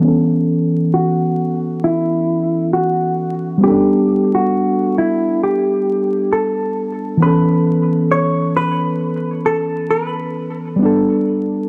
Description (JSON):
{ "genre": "lo-fi hip hop", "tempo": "67 BPM", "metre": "4/4", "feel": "swing 59% on 16ths", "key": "B minor", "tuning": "A4 = 441 Hz", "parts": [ { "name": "muted felt-like synth keys", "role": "accompaniment", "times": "0.0-11.7 s", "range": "E3 to A4", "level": "-18 LUFS", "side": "equal", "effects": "chorus, cassette tape, low-pass filter" }, { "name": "vintage hollow-body jazz guitar", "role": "melody", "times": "0.9-10.6 s", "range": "E4 to C#5", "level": "-20 LUFS", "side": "equal", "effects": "low-pass filter" } ], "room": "light reverb, studio reverb", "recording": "dark, warm production, vinyl crackle", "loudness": "-17 LUFS", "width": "mono", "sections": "0.0-11.7 A section", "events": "filter sweep 0.0-11.7", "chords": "0.0 B9sus4; 3.6 A9sus4; 7.2 B9sus4; 10.8 A9sus4", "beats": "| 0.04 0.94 1.83 2.73 | 3.62 4.52 5.42 6.31 | 7.21 8.10 9.00 9.89 | 10.79 11.68" }